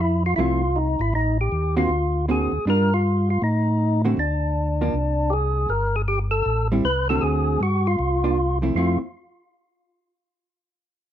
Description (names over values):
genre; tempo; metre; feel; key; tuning
jazz; 158 BPM; 4/4; swing 64% on 8ths; F major; A4 = 445 Hz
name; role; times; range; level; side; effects
percussive tonewheel organ; melody; 0.0-9.0 s; D4 to B4; -23 LUFS; equal; slow rotary speaker, overdrive
mellow tonewheel organ; bass; 0.0-9.0 s; G1 to A2; -22 LUFS; equal; stopped rotary speaker
vintage hollow-body jazz guitar; accompaniment; 0.4-9.0 s; D3 to Bb4; -23 LUFS; right 2 dB; none
room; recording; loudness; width
light reverb; close, detailed microphones; -19 LUFS; side -10 dB against mid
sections
0.0-2.7 A section; 2.7-8.8 B section; 8.8-10.3 C section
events
none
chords
0.0 Fmaj7; 1.1 Am7b5; 1.9 D7alt; 2.7 Gm7; 3.4 Am; 4.2 Dm; 5.0 Csus2; 5.7 Gmadd9; 6.5 Am7; 7.2 D7; 8.0 C9sus4; 8.8 Fmaj7